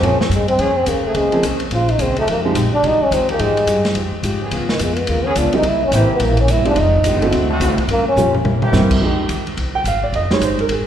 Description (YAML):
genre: jazz, big band swing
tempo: 214 BPM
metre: 4/4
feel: swing 62% on 8ths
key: F minor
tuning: A4 = 436 Hz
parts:
  - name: trombone with cup mute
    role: melody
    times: 0.0-8.3 s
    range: Eb3 to F4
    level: -18 LUFS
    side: equal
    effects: none
  - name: fingerpicked plugged-in steel-string acoustic guitar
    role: accompaniment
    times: 0.0-8.9 s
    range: G2 to C5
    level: -24 LUFS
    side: left 2 dB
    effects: none
  - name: warm upright piano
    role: accompaniment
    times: 0.0-2.5, 5.5-10.9 s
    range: F3 to G5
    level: -21 LUFS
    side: right 3 dB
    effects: none
  - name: clear trombone section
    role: sustained chords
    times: 0.0-9.4 s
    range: Db3 to Ab4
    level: -27 LUFS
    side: equal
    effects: none
  - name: upright bass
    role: bass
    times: 0.0-10.8 s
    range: F1 to C3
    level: -20 LUFS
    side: equal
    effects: none
  - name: vintage drum kit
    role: drums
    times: 0.0-10.8 s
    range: crash cymbal, hi-hat, kick drum, ride cymbal, snare drum, toms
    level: -24 LUFS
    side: equal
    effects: none
room: wet concert hall reverb, RT60 1.7 s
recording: recorded in a church or concert hall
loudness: -14 LUFS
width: side -10 dB against mid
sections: 0.0-9.0 A section; 9.0-10.9 A section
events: trombone solo 0.0-9.0; drum fill 8.2-8.7; upright piano solo 9.0-10.9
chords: 0.0 Bbm9; 2.3 Fm9; 4.5 Db7; 5.6 C7; 6.8 Fm9; 7.3 D7; 7.9 Gm7b5; 8.4 C7; 9.0 Fm9